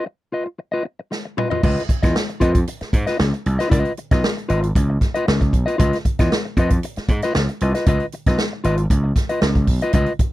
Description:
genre	funk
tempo	116 BPM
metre	4/4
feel	straight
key	Db mixolydian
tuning	A4 = 442 Hz
part	mellow electric guitar	accompaniment	0.0-10.2 s	F4 to Eb5	-22 LUFS	left 2 dB	none
part	swinging big-band drum kit	drums	1.1-10.3 s	crash cymbal, hi-hat, kick drum, snare drum, toms	-19 LUFS	equal	none
part	gritty slap bass	bass	1.6-10.0 s	Ab1 to Ab2	-20 LUFS	equal	overdrive
room	little or no reverb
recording	none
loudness	-17 LUFS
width	side -16 dB against mid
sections	0.0-1.6 A section; 1.6-10.3 B section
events	drum fill 1.1-1.6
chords	0.0 Cb; 1.6 Db9

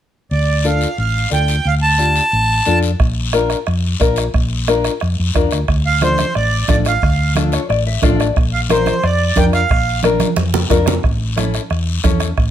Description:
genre	latin, cumbia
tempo	179 BPM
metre	4/4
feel	straight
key	D minor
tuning	A4 = 441 Hz
part	accordion	melody	0.3-2.8, 5.9-10.0 s	C5 to A5	-17 LUFS	right 3 dB	plate reverb
part	hollow-body short-scale fingered electric bass	bass	0.3-12.5 s	A1 to F2	-18 LUFS	equal	none
part	guiro	percussion	0.3-12.5 s	none	-28 LUFS	left 7 dB	none
part	nylon-string guitar	accompaniment	0.6-12.3 s	C#4 to F5	-18 LUFS	left 6 dB	none
part	bombo	percussion	3.0-12.5 s	none	-18 LUFS	right 2 dB	none
part	congas	percussion	6.0-12.2 s	none	-21 LUFS	right 6 dB	none
room	light reverb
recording	none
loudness	-13 LUFS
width	side -10 dB against mid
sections	0.3-5.7 A section; 5.7-12.5 B section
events	nylon-string guitar fill 7.4-8.4; drum fill 10.2-11.0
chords	0.3 Dm; 3.0 Bb; 5.7 Dm; 8.4 Bb; 11.0 A

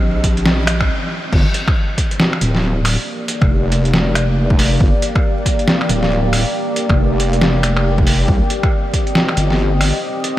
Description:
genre	deep dubstep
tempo	138 BPM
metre	4/4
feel	swing 61% on 16ths, half-time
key	G minor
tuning	A4 = 440 Hz
part	deep dark ambient pad	sustained chords	0.0-10.4 s	Bb3 to Eb5	-22 LUFS	left 1 dB	chorus, built-in reverb
part	wobble bass	bass	0.0-9.9 s	D1 to C2	-16 LUFS	equal	chorus, tube saturation
part	electronic kick drum	drums	0.2-9.0 s	none	-16 LUFS	equal	overdrive
part	trip hop sampler-style drum kit	drums	0.2-10.3 s	crash cymbal, finger snaps, hi-hat, snare drum	-19 LUFS	equal	overdrive
room	moderate huge ambient reverb, RT60 7.5 s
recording	dreamy mix soaked in reverb, vinyl crackle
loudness	-13 LUFS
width	side -14 dB against mid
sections	0.0-1.3 A section; 1.3-10.4 B section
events	build-up 0.0-1.3; stop 0.9-1.3; drop 1.3-10.4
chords	0.0 Cm; 1.3 Gm; 8.3 Cm

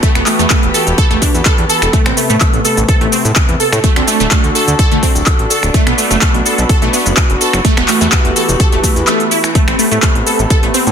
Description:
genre	progressive house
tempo	126 BPM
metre	4/4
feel	straight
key	A dorian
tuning	A4 = 440 Hz
part	dark studio string section	sustained chords	0.0-10.9 s	C3 to A4	-19 LUFS	equal	sidechain pumping
part	wide unison pluck	arpeggios	0.0-10.8 s	A3 to A4	-15 LUFS	right 1 dB	phaser, sidechain pumping, ping-pong delay
part	big-room dance drum kit	drums	0.0-10.9 s	finger snaps, handclaps, hi-hat, shaker	-16 LUFS	left 1 dB	soft clipping on snare
part	electronic kick drum	drums	0.0-10.6 s	none	-12 LUFS	equal	none
part	fat analog bass	bass	0.2-10.9 s	D1 to A2	-16 LUFS	equal	tube saturation, sidechain pumping
room	little or no reverb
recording	dense, heavily limited modern master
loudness	-9 LUFS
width	side -7 dB against mid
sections	0.0-10.9 A section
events	kick drops out 9.1-9.6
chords	0.0 Emadd9; 1.9 Amadd9; 3.8 D; 5.7 Bm; 7.6 Emadd9; 9.6 Amadd9

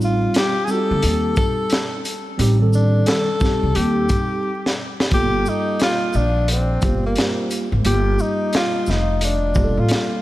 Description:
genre	hip hop, jazz-hop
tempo	88 BPM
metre	4/4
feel	swing 62% on 16ths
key	G minor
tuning	A4 = 440 Hz
part	mellow tenor saxophone	melody	0.0-10.2 s	Bb3 to A4	-22 LUFS	left 1 dB	tape echo
part	mellow tine electric piano	accompaniment	0.0-10.2 s	Eb3 to A4	-24 LUFS	right 2 dB	wide subtle chorus
part	upright bass	bass	0.0-9.9 s	F1 to Eb2	-19 LUFS	equal	none
part	crunchy breakbeat drum kit	drums	0.0-10.1 s	hi-hat, kick drum, shaker, snare drum	-22 LUFS	equal	none
room	moderate lush hall reverb, RT60 2.7 s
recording	dreamy mix soaked in reverb, vinyl crackle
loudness	-16 LUFS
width	side -16 dB against mid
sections	0.0-5.1 A section; 5.1-10.2 B section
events	drum fill 4.4-5.1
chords	0.0 Am7b5; 5.1 Gm9

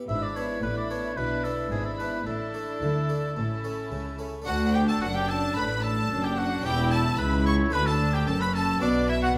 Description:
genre	classical, baroque-style concerto movement with solo episodes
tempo	110 BPM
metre	4/4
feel	straight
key	D major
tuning	A4 = 440 Hz
part	harpsichord	accompaniment	0.0-9.4 s	C#2 to F#4	-36 LUFS	equal	none
part	clear chamber violin section	melody	0.1-9.4 s	D5 to C#6	-37 LUFS	equal	none
part	warm oboe	melody	0.1-9.3 s	D4 to E5	-34 LUFS	equal	none
part	rich chamber violin section	second line	0.1-9.4 s	E4 to C#6	-37 LUFS	equal	none
part	rich chamber viola section	accompaniment	0.1-9.4 s	B3 to E4	-36 LUFS	equal	none
part	rich chamber double bass section	bass	0.1-9.4 s	E1 to D2	-33 LUFS	equal	none
part	rich studio cello section	bass	0.1-9.4 s	C#2 to D3	-32 LUFS	equal	none
room	wet recital hall reverb, RT60 1.3 s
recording	none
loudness	-27 LUFS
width	mono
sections	0.0-4.5 A section; 4.5-9.4 B section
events	none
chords	0.1 E7/G#; 2.3 Asus4; 3.4 A; 4.5 D; 6.6 A9/E; 7.7 D; 8.8 Bm

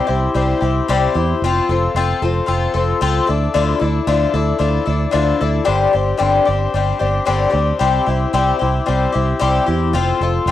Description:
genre	folk rock and heartland rock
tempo	113 BPM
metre	4/4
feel	straight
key	C major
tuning	A4 = 439 Hz
part	picked twelve-string acoustic guitar	accompaniment	0.0-10.5 s	G2 to A4	-16 LUFS	left 5 dB	cassette tape
part	fingered electric bass	bass	0.1-10.5 s	F1 to E2	-19 LUFS	right 2 dB	none
room	light reverb, small room ambience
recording	home recording on cassette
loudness	-14 LUFS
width	side -12 dB against mid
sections	0.0-10.5 A section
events	none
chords	0.0 C; 1.4 F; 3.3 Dmadd9; 5.7 Gsus4; 7.8 C; 9.9 F

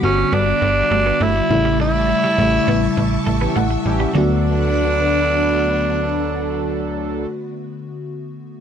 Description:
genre	pop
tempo	102 BPM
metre	4/4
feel	straight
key	D major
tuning	A4 = 439 Hz
part	raspy tenor saxophone	melody	0.0-7.3 s	C#4 to E4	-19 LUFS	right 2 dB	slapback echo
part	FM electric piano with soft pad layer	accompaniment	0.0-8.6 s	C#3 to A5	-22 LUFS	left 2 dB	chorus
part	string machine, full ensemble	sustained chords	0.0-7.3 s	D3 to D6	-24 LUFS	left 1 dB	ensemble chorus
part	slap-like FM bass	bass	0.0-7.3 s	G1 to D2	-22 LUFS	equal	none
part	twelve-string electric guitar	riff	0.3-4.3 s	F#3 to B3	-25 LUFS	right 6 dB	lush chorus, slapback echo
part	analog synth brass	stabs	3.4-7.3 s	E3 to A4	-25 LUFS	right 3 dB	chorus
room	light reverb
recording	dry, close 1970s-style studio recording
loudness	-15 LUFS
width	side -8 dB against mid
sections	0.0-4.1 A section; 4.1-6.5 B section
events	band accent 1.8-4.1; FM electric piano fill 3.0-4.1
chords	0.0 Gmaj7; 1.5 A7; 4.1 D6

